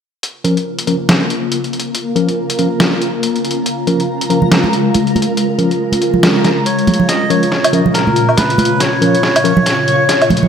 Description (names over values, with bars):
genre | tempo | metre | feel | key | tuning
deep dubstep | 140 BPM | 4/4 | swing 58% on 16ths, half-time | Bb minor | A4 = 440 Hz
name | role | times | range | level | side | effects
granular cloud pad | sustained chords | 0.8-10.5 s | Bb2 to F4 | -17 LUFS | left 1 dB | built-in reverb, ensemble chorus
trip hop sampler-style drum kit | drums | 0.2-10.5 s | hi-hat, snare drum, woodblock | -16 LUFS | equal | high-pass filter on hats, high-pass filter on snare, high-pass filter on perc, high-pass filter on room
backwards swelling texture | texture | 1.3-10.5 s | Bb4 to Db5 | -23 LUFS | right 1 dB | built-in reverb, analog chorus
mellow tine electric piano | stabs | 0.4-9.5 s | F3 to Bb4 | -18 LUFS | left 2 dB | medium stereo tremolo, low-pass filter, dub echo
congas | percussion | 4.4-10.5 s | none | -17 LUFS | right 3 dB | dub echo
melodica | melody | 6.7-10.3 s | Bb4 to Eb5 | -16 LUFS | equal | dub echo
electronic kick drum | drums | 7.1-10.2 s | none | -30 LUFS | equal | none
room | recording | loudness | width
wet lush hall reverb, RT60 2.0 s | dreamy mix soaked in reverb | -11 LUFS | side -7 dB against mid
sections
0.2-7.1 A section; 7.1-10.5 B section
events
filter sweep on ambient pad 0.2-7.1; build-up 7.1-10.5; drum fill 7.1-10.5; filter sweep on tine electric piano 7.1-10.5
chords
0.2 Bbm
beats
| 0.23 0.66 1.09 1.52 | 1.95 2.37 2.80 3.23 | 3.66 4.09 4.52 4.95 | 5.37 5.80 6.23 6.66 | 7.09 7.52 7.95 8.37 | 8.80 9.23 9.66 10.09